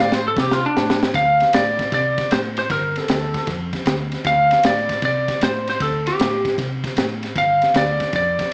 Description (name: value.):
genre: electric blues shuffle.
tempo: 154 BPM.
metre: 4/4.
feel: swing 66% on 8ths.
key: D minor.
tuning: A4 = 440 Hz.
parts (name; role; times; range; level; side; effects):
lightly driven lead guitar; melody; 0.0-8.5 s; D4 to F5; -21 LUFS; equal; slapback echo.
vintage muted fingered electric bass; bass; 0.0-8.4 s; G1 to C3; -29 LUFS; equal; none.
crunchy breakbeat drum kit; drums; 0.1-8.5 s; kick drum, ride cymbal, snare drum; -24 LUFS; equal; none.
room: small room ambience.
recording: live gig heard through the venue's PA, club reverb, small speaker sound.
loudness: -19 LUFS.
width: mono.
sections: 0.0-1.1 A section; 1.1-8.5 B section.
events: drum fill 0.0-1.1; lead electric guitar solo 0.0-1.1.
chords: 0.0 D5; 2.7 Gsus2; 4.3 D7(no3); 7.4 G5.